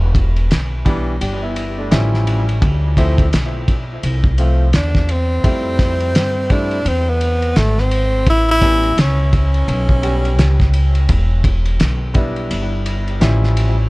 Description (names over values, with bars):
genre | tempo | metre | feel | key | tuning
hip hop, jazz-hop | 85 BPM | 4/4 | swing 60% on 16ths | D dorian | A4 = 435 Hz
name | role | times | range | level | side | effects
upright bass | bass | 0.0-13.9 s | E1 to G2 | -16 LUFS | equal | none
cloth-damped thuddy drum kit | drums | 0.1-13.8 s | hi-hat, kick drum, ride cymbal, snare drum | -18 LUFS | equal | none
clear upright piano | accompaniment | 0.9-13.7 s | E3 to G4 | -25 LUFS | equal | dub echo
breathy tenor saxophone | melody | 4.8-10.7 s | A3 to E4 | -19 LUFS | equal | dub echo
room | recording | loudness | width
small room ambience | echo-heavy mix | -13 LUFS | side -23 dB against mid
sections
0.0-13.9 A section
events
none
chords
0.0 Em7; 1.9 A7b13; 2.6 Dm7; 5.4 Fmaj9; 8.3 A9; 11.1 Em7; 13.2 A7b13